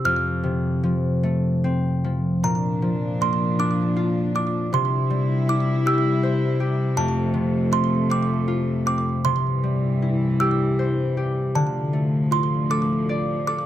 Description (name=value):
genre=children's music, lullaby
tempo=52 BPM (dotted quarters)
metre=6/8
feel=rubato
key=F major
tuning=A4 = 440 Hz
part: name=music box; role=melody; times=0.0-13.7 s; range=A5 to F6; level=-26 LUFS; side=right 5 dB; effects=slapback echo
part: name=concert harp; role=accompaniment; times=0.0-13.7 s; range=F2 to D5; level=-21 LUFS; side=left 1 dB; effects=none
part: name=rich chamber string section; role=sustained chords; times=2.4-13.7 s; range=C2 to E4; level=-26 LUFS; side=equal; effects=none
room=light reverb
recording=dry, close 1970s-style studio recording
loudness=-20 LUFS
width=side -12 dB against mid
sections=0.0-2.4 A section; 2.4-13.7 B section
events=none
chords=0.1 F; 2.4 Bb; 4.7 C; 7.0 F; 9.2 C; 11.6 Dm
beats=| 0.05 1.25 | 2.44 3.59 | 4.73 5.86 | 6.97 8.10 | 9.25 10.40 | 11.55 12.71